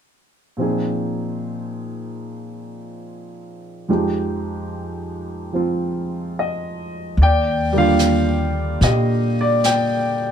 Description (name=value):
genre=jazz ballad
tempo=73 BPM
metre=4/4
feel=swing 68% on 8ths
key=Eb major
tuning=A4 = 440 Hz
part: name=warm baby grand piano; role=accompaniment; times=0.6-10.3 s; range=F2 to G5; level=-21 LUFS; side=equal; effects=none
part: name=upright bass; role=bass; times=7.2-10.3 s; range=Eb2 to Bb2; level=-19 LUFS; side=equal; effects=none
part: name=jazz brush drum kit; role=drums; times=7.2-10.3 s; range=brushed snare drum, hi-hat, snare drum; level=-28 LUFS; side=right 3 dB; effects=none
room=moderate club reverb, RT60 0.6 s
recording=none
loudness=-18 LUFS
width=side -8 dB against mid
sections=0.6-7.2 A section; 7.2-10.3 B section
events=none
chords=0.6 Bb7sus4; 3.9 Fm7; 7.2 Ebmaj9